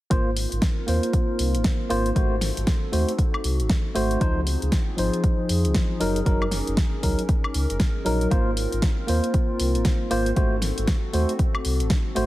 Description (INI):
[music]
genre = deep house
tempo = 117 BPM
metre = 4/4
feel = swing 60% on 16ths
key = Ab mixolydian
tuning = A4 = 440 Hz
[part]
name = hollow soft pad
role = sustained chords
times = 0.1-12.3 s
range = C4 to Bb4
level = -33 LUFS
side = left 1 dB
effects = chorus, sidechain pumping
[part]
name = bright tine electric piano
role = stabs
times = 0.1-12.3 s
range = F3 to C5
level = -26 LUFS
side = equal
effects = sidechain pumping, dub echo
[part]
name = sub bass with octave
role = bass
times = 0.1-12.3 s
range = Gb1 to F2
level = -25 LUFS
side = equal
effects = tube saturation, sidechain pumping
[part]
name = deep house drum kit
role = drums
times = 0.1-12.3 s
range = hi-hat, snare drum, woodblock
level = -29 LUFS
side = equal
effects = none
[part]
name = electronic kick drum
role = drums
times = 0.1-12.0 s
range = none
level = -22 LUFS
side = equal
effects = none
[sound]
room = light reverb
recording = heavily compressed radio sound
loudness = -20 LUFS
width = side -16 dB against mid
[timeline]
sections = 0.1-12.3 A section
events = none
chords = 0.1 Ab69; 2.2 Ab7b9; 4.2 Dbmaj9; 6.0 Gb6; 8.3 Ab69; 10.4 Ab7b9